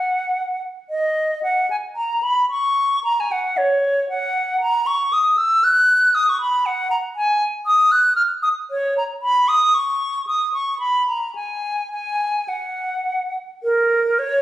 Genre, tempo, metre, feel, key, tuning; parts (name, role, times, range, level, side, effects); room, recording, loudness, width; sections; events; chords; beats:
classical, baroque-style fantasia for unaccompanied flute; 100-121 BPM; 3/4; rubato; F# major from 7.2 s; A4 = 441 Hz
silver concert flute; solo; 0.0-14.4 s; A#4 to F#6; -17 LUFS; equal
wet stone room reverb, RT60 1.3 s; recorded on a phone in the room, studio reverb, compression; -17 LUFS; side -14 dB against mid
0.9-13.7 A section
0.32 | 0.90 1.43 1.97 | 2.50 3.04 3.57 | 4.09 4.62 5.13 | 5.64 6.15 6.67 | 7.17 7.67 8.18 | 8.72 9.24 9.75 | 10.27 10.80 11.35 | 11.92 12.51 13.09 | 13.66 14.20